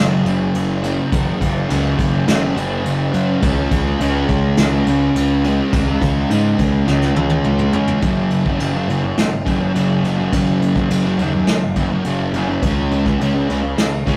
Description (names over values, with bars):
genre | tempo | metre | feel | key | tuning
rock, shoegaze and dream pop | 104 BPM | 4/4 | straight | unclear | A4 = 442 Hz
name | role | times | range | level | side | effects
fuzz guitar | riff | 0.0-14.2 s | Gb2 to Db4 | -20 LUFS | equal | distortion
fuzz picked electric bass | bass | 0.0-14.2 s | Gb1 to Db3 | -24 LUFS | equal | overdrive
vintage brush drum kit | drums | 0.3-14.2 s | crash cymbal, kick drum, snare drum, toms | -24 LUFS | equal | none
room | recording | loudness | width
moderate small room reverb, RT60 0.5 s | rough rehearsal-room recording, warm saturation | -17 LUFS | mono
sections
0.0-8.0 A section; 8.0-14.2 B section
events
drum fill 6.9-8.0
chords
0.0 Gb5; 3.4 Db5; 8.0 Gb5; 12.6 Db5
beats
0.55 | 1.12 1.70 2.27 2.85 | 3.42 4.00 4.57 5.15 | 5.72 6.30 6.88 7.45 | 8.03 8.60 9.18 9.75 | 10.33 10.90 11.48 12.06 | 12.63 13.21 13.78